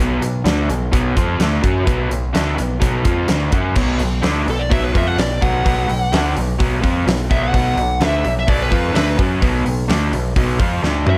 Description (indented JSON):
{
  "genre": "blues rock power trio and southern rock",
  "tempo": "127 BPM",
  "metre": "4/4",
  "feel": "straight",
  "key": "B minor",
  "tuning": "A4 = 440 Hz",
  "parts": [
    { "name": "raw garage guitar", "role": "riff", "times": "0.0-11.2 s", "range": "B2 to F#4", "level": "-22 LUFS", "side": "equal", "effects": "overdrive" },
    { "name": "growling picked electric bass", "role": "bass", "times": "0.0-11.2 s", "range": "B1 to F#2", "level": "-23 LUFS", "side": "equal", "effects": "overdrive" },
    { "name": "big rock drum kit", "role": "drums", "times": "0.2-11.2 s", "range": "crash cymbal, hi-hat, kick drum, snare drum, toms", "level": "-22 LUFS", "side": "equal", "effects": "none" },
    { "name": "smooth overdriven lead guitar", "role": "second line", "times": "4.5-11.2 s", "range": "A4 to F#5", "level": "-24 LUFS", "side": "equal", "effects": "none" }
  ],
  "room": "light reverb",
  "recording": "none",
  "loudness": "-17 LUFS",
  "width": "mono",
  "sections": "0.0-3.8 A section; 3.8-11.2 B section",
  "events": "lead electric guitar solo 3.8-11.2; drum fill 10.8-11.2",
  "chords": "0.0 Bm",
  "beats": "0.47 0.94 1.41 | 1.88 2.36 2.83 3.30 | 3.77 4.25 4.72 5.19 | 5.66 6.13 6.60 7.07 | 7.54 8.02 8.49 8.96 | 9.43 9.90 10.37 10.84"
}